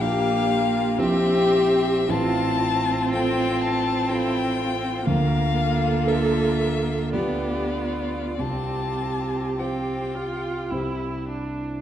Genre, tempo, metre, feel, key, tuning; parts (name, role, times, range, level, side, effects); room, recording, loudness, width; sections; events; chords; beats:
classical, slow romantic movement for piano quintet; 46-63 BPM; 3/4; rubato; F major; A4 = 441 Hz
clear violin; melody; 0.0-11.3 s; D5 to A5; -28 LUFS; left 8 dB
rich violin; second line; 0.0-11.7 s; E4 to G4; -30 LUFS; left 2 dB
warm cello; second line; 0.0-11.3 s; C4 to Bb4; -28 LUFS; right 2 dB
clear viola; accompaniment; 0.0-11.8 s; Bb3 to F4; -27 LUFS; right 3 dB
dark grand piano; accompaniment; 0.0-11.8 s; A1 to C5; -26 LUFS; right 1 dB
wet recital hall reverb, RT60 1.3 s; dark, warm production; -21 LUFS; side -10 dB against mid
0.0-11.8 A section
0.0 Gm7/Bb; 1.0 C7/Bb; 2.1 F/A; 5.1 Bb/D; 7.1 G7/D; 8.4 Csus4; 10.7 C
0.01 0.98 | 2.08 3.12 4.09 | 5.06 6.06 7.13 | 8.38 9.59 10.71